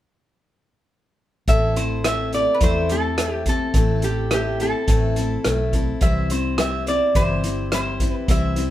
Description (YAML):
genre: honky-tonk and classic country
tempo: 106 BPM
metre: 4/4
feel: straight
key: A minor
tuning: A4 = 440 Hz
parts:
  - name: lap resonator guitar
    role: melody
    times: 1.5-8.7 s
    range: G4 to E5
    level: -24 LUFS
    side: right 1 dB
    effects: none
  - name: picked steel-string acoustic guitar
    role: accompaniment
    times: 1.5-8.7 s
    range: A2 to C5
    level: -24 LUFS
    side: left 3 dB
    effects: none
  - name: vintage muted fingered electric bass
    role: bass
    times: 1.5-8.7 s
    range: G1 to E2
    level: -25 LUFS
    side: equal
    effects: none
  - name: vintage drum kit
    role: drums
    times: 1.5-8.7 s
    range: hi-hat, kick drum, rim click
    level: -22 LUFS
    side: equal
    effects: none
room: moderate studio reverb, RT60 0.8 s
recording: band playing live in one room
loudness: -18 LUFS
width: side -13 dB against mid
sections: 1.5-8.7 A section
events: none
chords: 1.5 Am; 6.0 C